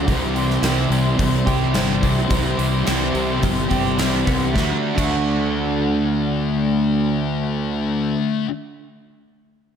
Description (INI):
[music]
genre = rock, shoegaze and dream pop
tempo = 107 BPM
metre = 4/4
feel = straight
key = D mixolydian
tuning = A4 = 436 Hz
[part]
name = hollow soft pad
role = sustained chords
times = 0.0-7.6 s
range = D4 to C6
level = -30 LUFS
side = equal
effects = chorus
[part]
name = direct-recorded clean electric guitar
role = arpeggios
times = 0.0-8.5 s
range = A3 to G4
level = -30 LUFS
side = right 6 dB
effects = lush chorus, slapback echo
[part]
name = crunchy overdriven guitar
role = riff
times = 0.0-8.5 s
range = C3 to G4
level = -24 LUFS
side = right 9 dB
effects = reverse reverb
[part]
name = thick fuzz guitar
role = riff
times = 0.0-8.5 s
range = C3 to D4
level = -22 LUFS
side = left 8 dB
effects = distortion, lush chorus
[part]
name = fuzz fingered electric bass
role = bass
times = 0.0-8.1 s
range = G1 to D2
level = -24 LUFS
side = equal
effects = overdrive
[part]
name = gated 80s drum kit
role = drums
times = 0.1-5.1 s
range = crash cymbal, hi-hat, kick drum, snare drum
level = -24 LUFS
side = equal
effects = none
[sound]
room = light reverb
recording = none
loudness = -17 LUFS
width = side -8 dB against mid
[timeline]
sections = 0.0-4.6 A section; 4.6-6.8 B section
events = none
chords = 0.1 C; 4.6 D